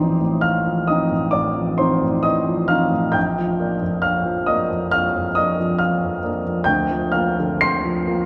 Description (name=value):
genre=classical, romantic character piece for solo piano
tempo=67 BPM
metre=4/4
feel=rubato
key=Bb major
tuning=A4 = 441 Hz
part: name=warm grand piano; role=solo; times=0.0-8.3 s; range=A1 to C7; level=-20 LUFS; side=equal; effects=none
room=wet cathedral reverb, RT60 5.5 s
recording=recorded in a church or concert hall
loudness=-20 LUFS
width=mono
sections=0.0-8.3 A section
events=none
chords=0.0 F7/A; 3.2 Bb; 6.7 Bb/D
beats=0.47 1.36 2.27 | 3.15 4.03 4.92 5.79 | 6.65 7.61